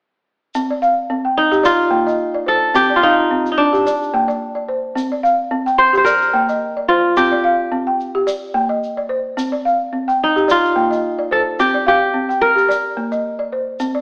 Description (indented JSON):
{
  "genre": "west african traditional, West African string and xylophone music",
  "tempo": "109 BPM",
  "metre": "4/4",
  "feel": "swing 54% on 16ths",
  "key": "C dorian",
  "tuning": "A4 = 440 Hz",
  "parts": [
    { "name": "tube shaker", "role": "percussion", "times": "0.5-13.9 s", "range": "none", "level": "-41 LUFS", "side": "equal", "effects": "none" },
    { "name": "balafon", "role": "arpeggios", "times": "0.6-14.0 s", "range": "Bb3 to G5", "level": "-20 LUFS", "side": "equal", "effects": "none" },
    { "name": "kora", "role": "melody", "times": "1.4-13.7 s", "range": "D4 to C5", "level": "-17 LUFS", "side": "equal", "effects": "none" }
  ],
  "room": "moderate recital hall reverb, RT60 1.4 s",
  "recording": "AM radio sound",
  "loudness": "-17 LUFS",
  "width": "mono",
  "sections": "0.5-14.0 A section",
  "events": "none",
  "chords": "0.5 C5; 1.6 Bb; 2.8 Cm; 3.9 Bb; 5.0 C5; 6.1 Bb; 7.2 C5; 8.3 Bb; 9.4 C5; 10.5 Bb; 11.6 C5; 12.7 Bb"
}